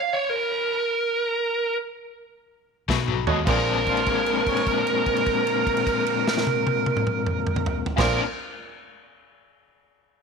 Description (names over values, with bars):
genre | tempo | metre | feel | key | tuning
electric blues shuffle | 100-124 BPM | 4/4 | swing 66% on 8ths | Bb mixolydian | A4 = 440 Hz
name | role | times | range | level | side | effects
smooth overdriven lead guitar | melody | 0.0-8.2 s | Bb4 to F5 | -24 LUFS | right 2 dB | none
overdriven electric guitar | riff | 2.9-8.2 s | Bb2 to D4 | -26 LUFS | left 11 dB | tremolo
vintage muted fingered electric bass | bass | 2.9-8.2 s | Bb1 to D#2 | -29 LUFS | equal | none
natural country drum kit | drums | 2.9-8.1 s | crash cymbal, kick drum, snare drum, toms | -28 LUFS | equal | none
clear upright piano | accompaniment | 3.3-8.2 s | F4 to D#5 | -30 LUFS | right 11 dB | none
mellow harmonica | second line | 3.9-8.2 s | F4 to Db5 | -28 LUFS | right 11 dB | overdrive
room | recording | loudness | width
moderate echo chamber reverb, RT60 1.8 s, small room ambience | 1960s-style stereo with parts hard left and right | -21 LUFS | side -5 dB against mid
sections
0.0-3.5 A section; 3.5-8.3 B section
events
slowing down 0.0-3.5; stop 0.0-2.9; drum fill 2.9-3.5; held note 3.5-7.9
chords
0.0 Bb5; 2.9 B9; 3.5 Bb9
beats
0.27 0.76 | 1.27 1.79 2.33 2.89 | 3.47 4.07 4.67 5.27 | 5.87 6.47 7.07 7.67